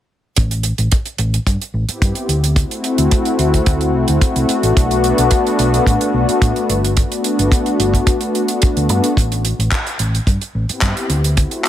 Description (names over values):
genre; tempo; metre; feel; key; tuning
nu-disco, nu disco; 109 BPM; 4/4; straight; A dorian; A4 = 436 Hz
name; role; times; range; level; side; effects
hollow-body short-scale fingered electric bass; bass; 0.4-11.4 s; G1 to A2; -18 LUFS; equal; none
damped 70s drum kit; drums; 0.4-11.7 s; handclaps, hi-hat; -22 LUFS; right 4 dB; none
kick drum; drums; 0.4-11.5 s; none; -15 LUFS; equal; none
warm analog pad; accompaniment; 1.9-11.7 s; A3 to G4; -17 LUFS; left 2 dB; chorus, vintage 12-bit sampler grit, sidechain pumping, analog delay
room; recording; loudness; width
light reverb, small room ambience; echo-heavy mix; -14 LUFS; side -11 dB against mid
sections
0.4-11.7 A section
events
none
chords
0.4 Am7; 2.3 D9; 4.8 Gmaj9; 9.2 Am7; 11.1 D9